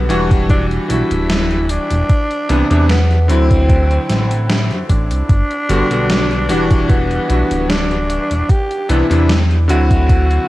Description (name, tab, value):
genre	vaporwave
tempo	75 BPM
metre	4/4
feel	straight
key	unclear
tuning	A4 = 440 Hz
part	growling tenor saxophone	melody	0.0-10.5 s	B3 to G4	-20 LUFS	equal	tape echo
part	bright electric grand piano	accompaniment	0.0-10.5 s	C3 to F#4	-18 LUFS	left 1 dB	lush chorus
part	chorused synth bass	bass	0.0-10.4 s	D1 to F#2	-16 LUFS	equal	none
part	gated 80s digital drum machine	drums	0.1-10.5 s	hi-hat, snare drum	-21 LUFS	equal	gated reverb, gated reverb snare, overdrive
part	electronic kick drum	drums	0.3-10.3 s	none	-13 LUFS	equal	overdrive
room	little or no reverb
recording	cassette tape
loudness	-12 LUFS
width	side -17 dB against mid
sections	0.0-10.5 A section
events	none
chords	0.5 Em9; 2.1 Cmaj9; 3.3 D9; 5.3 Gmaj7; 6.9 Em9; 8.5 Cmaj9; 9.7 D9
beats	0.50 1.30 | 2.10 2.90 3.70 4.50 | 5.30 6.10 6.90 7.70 | 8.50 9.30 10.10